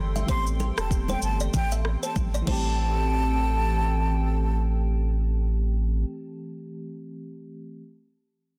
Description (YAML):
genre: afrobeats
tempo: 96 BPM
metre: 4/4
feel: swing 58% on 16ths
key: A minor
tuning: A4 = 440 Hz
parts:
  - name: FM electric piano with tremolo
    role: accompaniment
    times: 0.0-7.8 s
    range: E3 to G4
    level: -37 LUFS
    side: equal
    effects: none
  - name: hollow soft pad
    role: sustained chords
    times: 0.0-6.0 s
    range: C4 to C6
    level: -39 LUFS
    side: equal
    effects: chorus
  - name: saturated sub bass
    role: bass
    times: 0.0-6.0 s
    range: E1 to A1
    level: -27 LUFS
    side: equal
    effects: none
  - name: buzzing kalimba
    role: riff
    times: 0.2-2.6 s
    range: A4 to E5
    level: -40 LUFS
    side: equal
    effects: digital delay
  - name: afro-pop drum kit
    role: drums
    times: 0.2-2.6 s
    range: crash cymbal, kick drum, rim click, shaker, toms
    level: -32 LUFS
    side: equal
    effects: soft clipping on snare
  - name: congas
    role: percussion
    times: 0.2-3.1 s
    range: none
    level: -37 LUFS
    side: equal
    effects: none
  - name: breathy mellow silver concert flute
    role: melody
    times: 0.3-4.6 s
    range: G5 to C6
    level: -33 LUFS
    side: equal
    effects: digital delay
room: little or no reverb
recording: dense, heavily limited modern master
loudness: -25 LUFS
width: mono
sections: 0.0-2.8 A section; 2.8-5.3 B section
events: drum fill 2.2-2.8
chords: 0.0 Am7